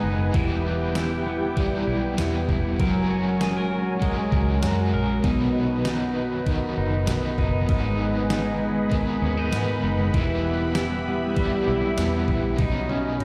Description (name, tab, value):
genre	dream pop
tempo	98 BPM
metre	4/4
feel	straight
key	B major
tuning	A4 = 440 Hz
part	crunchy overdriven guitar	accompaniment	0.0-13.2 s	G#2 to A#4	-32 LUFS	equal	tremolo, subtle chorus, shimmer reverb
part	warm analog pad	sustained chords	0.0-13.2 s	D#4 to B5	-32 LUFS	equal	chorus, shimmer reverb
part	electric guitar at the edge of break-up	arpeggios	0.0-13.2 s	G#2 to A#4	-28 LUFS	equal	lush chorus, digital delay, shimmer reverb
part	vintage muted fingered electric bass	bass	0.0-13.2 s	E1 to G#2	-30 LUFS	equal	none
part	detuned 8-bit digital drum machine	drums	0.3-13.2 s	kick drum, ride cymbal, snare drum, tambourine, toms	-29 LUFS	equal	none
room	moderate plate reverb, RT60 2.3 s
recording	played on a big sound system in a bare room, stone room reverb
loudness	-24 LUFS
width	mono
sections	0.0-13.2 A section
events	drum fill 12.6-13.2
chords	0.3 Em; 2.8 F#add9; 5.2 B; 7.7 G#m; 10.1 Em; 12.6 Badd9